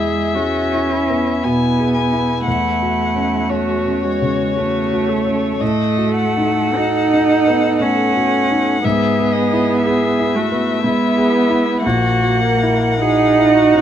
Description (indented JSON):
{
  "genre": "classical, slow romantic movement for piano quartet",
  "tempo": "47-61 BPM",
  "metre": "3/4",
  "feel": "rubato",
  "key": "E major",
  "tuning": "A4 = 438 Hz",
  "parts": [
    { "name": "muted violin", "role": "melody", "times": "0.0-13.8 s", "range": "C#5 to G#5", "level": "-20 LUFS", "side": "left 6 dB", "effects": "none" },
    { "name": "muted cello", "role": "second line", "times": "0.0-13.8 s", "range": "G#3 to D#4", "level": "-17 LUFS", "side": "right 4 dB", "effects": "none" },
    { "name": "muted viola", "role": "accompaniment", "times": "0.0-13.8 s", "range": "E4 to A#4", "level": "-24 LUFS", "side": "right 1 dB", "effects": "none" },
    { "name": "warm concert grand piano", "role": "accompaniment", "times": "0.0-13.8 s", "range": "A#1 to G#4", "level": "-20 LUFS", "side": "left 1 dB", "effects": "none" }
  ],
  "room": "moderate studio reverb, RT60 0.5 s",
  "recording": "dark, warm production",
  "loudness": "-14 LUFS",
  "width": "side -10 dB against mid",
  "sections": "0.0-13.8 A section",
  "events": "none",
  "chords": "0.0 E; 2.5 F#m/E; 5.6 B7/A; 8.8 E/G#; 11.8 F#7/A#"
}